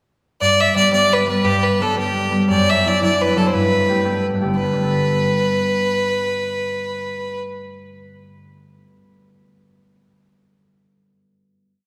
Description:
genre	celtic folk, Celtic jig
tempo	116 BPM (dotted quarters)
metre	6/8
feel	straight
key	G major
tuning	A4 = 438 Hz
part	clear fiddle	melody	0.4-7.4 s	G4 to E5	-20 LUFS	equal	none
part	concert harp	accompaniment	0.4-8.3 s	F#2 to A4	-23 LUFS	equal	none
room	wet church reverb, RT60 3.4 s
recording	recorded in a church or concert hall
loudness	-18 LUFS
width	mono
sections	0.4-4.6 A section; 4.6-6.6 final chord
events	none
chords	0.4 G; 2.5 Dadd9/F#; 3.5 Gadd9

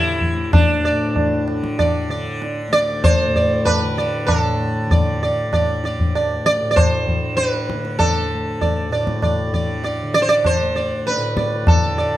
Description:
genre	indian classical, Hindustani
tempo	97 BPM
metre	3/4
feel	straight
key	unclear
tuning	A4 = 442 Hz
part	sitar	melody	0.0-12.2 s	D4 to D5	-19 LUFS	right 1 dB	none
part	tanpura	drone	0.0-12.2 s	D2 to D3	-25 LUFS	equal	none
part	tabla	percussion	0.2-11.9 s	none	-19 LUFS	left 1 dB	none
room	moderate recital hall reverb, RT60 1.5 s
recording	close, detailed microphones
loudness	-16 LUFS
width	side -14 dB against mid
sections	0.0-4.3 A section; 4.3-12.2 B section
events	speeding up 0.0-12.2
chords	none

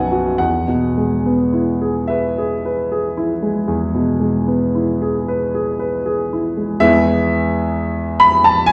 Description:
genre	classical, romantic nocturne for solo piano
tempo	35-45 BPM (dotted quarters)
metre	12/8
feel	rubato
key	E major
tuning	A4 = 442 Hz
part	warm grand piano	solo	0.0-8.7 s	B1 to B5	-17 LUFS	equal	none
room	wet recital hall reverb, RT60 1.5 s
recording	heard from further back in the room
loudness	-17 LUFS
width	mono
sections	0.0-6.8 A section; 6.8-8.7 B section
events	none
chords	0.4 E

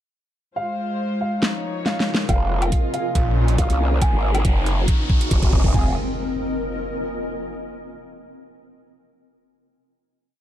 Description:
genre	heavy wobble dubstep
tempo	139 BPM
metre	4/4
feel	half-time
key	F phrygian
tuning	A4 = 440 Hz
part	dark concert grand piano	melody	0.6-5.9 s	F5 to Ab5	-30 LUFS	right 1 dB	low-pass filter, dub echo
part	dark studio string section	sustained chords	0.6-5.9 s	C3 to Db5	-30 LUFS	left 1 dB	sidechain pumping
part	granular cloud pad	texture	1.8-7.4 s	C4 to Ab5	-29 LUFS	left 1 dB	built-in reverb, sidechain pumping
part	dubstep drum kit	drums	1.4-5.5 s	hi-hat, snare drum, woodblock	-24 LUFS	left 1 dB	high-pass filter on snare, high-pass filter on hats, high-pass filter on perc
part	growl bass	bass	2.3-5.9 s	F1 to C2	-21 LUFS	equal	chorus, overdrive
part	dubstep drum kit	drums	2.3-5.8 s	crash cymbal, kick drum, toms	-19 LUFS	equal	none
part	riser and impact	sound effects	3.4-7.5 s	none	-32 LUFS	equal	none
part	snarling distorted saw bass	bass	3.2-3.6 s	Bb1	-18 LUFS	equal	distortion, overdrive
room	light reverb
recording	dark, warm production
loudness	-19 LUFS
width	side -11 dB against mid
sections	0.6-2.3 intro; 2.3-5.7 build; 5.7-7.5 final chord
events	drum fill 1.9-2.3, 4.0-5.7; build-up 2.3-5.7; riser 3.4-5.7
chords	0.6 Fm; 1.4 Dbadd9; 2.3 Fm; 3.2 Bbm; 4.0 Abadd9; 4.9 Gb; 5.7 Fm

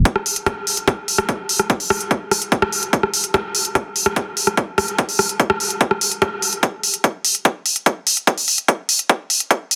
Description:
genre	psychedelic trance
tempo	146 BPM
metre	4/4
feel	straight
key	none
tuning	none
part	electronic kick drum	drums	0.1-9.6 s	none	-18 LUFS	equal	high-pass filter on kick
part	techno drum kit	drums	0.1-9.8 s	hi-hat, rim click	-20 LUFS	equal	soft clipping on snare
room	moderate lush hall reverb, RT60 1.9 s, digital ambience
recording	dense, heavily limited modern master, high-pass filter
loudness	-19 LUFS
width	mono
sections	0.1-9.8 A section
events	build-up 0.1-9.8; drum fill 6.6-9.8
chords	none

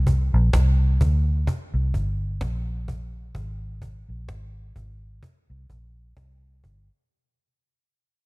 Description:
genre	dub reggae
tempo	64 BPM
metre	4/4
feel	swing 56% on 16ths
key	unclear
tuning	A4 = 440 Hz
part	vintage muted fingered electric bass	bass	0.0-6.9 s	G1 to D2	-22 LUFS	equal	none
part	cajon	drums	0.1-6.9 s	none	-28 LUFS	equal	none
room	little or no reverb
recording	none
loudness	-20 LUFS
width	side -26 dB against mid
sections	0.0-7.1 A section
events	fade-out 0.0-7.1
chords	none

